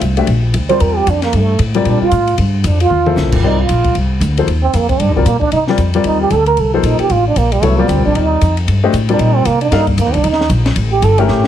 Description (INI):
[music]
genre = modal jazz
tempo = 229 BPM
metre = 4/4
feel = swing 60% on 8ths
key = G dorian, C dorian from 3.4 s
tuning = A4 = 440 Hz
[part]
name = upright bass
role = bass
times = 0.0-11.5 s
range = G1 to C3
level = -14 LUFS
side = equal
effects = none
[part]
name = compact cocktail drum kit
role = drums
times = 0.0-11.5 s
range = crash cymbal, hi-hat, kick drum, ride cymbal, snare drum, toms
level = -23 LUFS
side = left 3 dB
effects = none
[part]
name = dark baby grand piano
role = accompaniment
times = 0.2-11.5 s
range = F3 to F5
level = -16 LUFS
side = left 6 dB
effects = none
[part]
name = trombone with plunger mute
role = second line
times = 0.7-11.4 s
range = G3 to C5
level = -15 LUFS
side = right 5 dB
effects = none
[sound]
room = light reverb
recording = heavily compressed radio sound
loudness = -11 LUFS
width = side -10 dB against mid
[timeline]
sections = 0.0-3.4 A section; 3.4-11.5 A section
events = trombone solo 0.0-11.5; drum fill 2.9, 11.3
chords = 0.0 Gm11; 3.4 Cm11; 10.8 A7b9